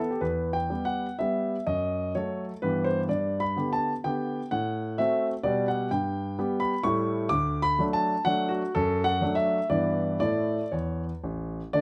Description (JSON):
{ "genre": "classical-period piano sonatina", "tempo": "126 BPM", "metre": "3/4", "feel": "rubato", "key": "E minor, D major from 5.9 s", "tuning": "A4 = 441 Hz", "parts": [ { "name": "clear grand piano", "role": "solo", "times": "0.0-11.8 s", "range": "A1 to D6", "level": "-28 LUFS", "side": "equal", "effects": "none" } ], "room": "light reverb", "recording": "none", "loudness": "-28 LUFS", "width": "mono", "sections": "0.2-11.8 A section", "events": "none", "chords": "0.2 Em; 1.7 D#dim/F#; 2.6 Em/G; 3.1 G; 4.5 F#dim/A; 5.5 G/B; 5.9 G; 6.9 A7; 7.3 D; 8.7 D/F#; 9.7 Em7/G; 10.2 A" }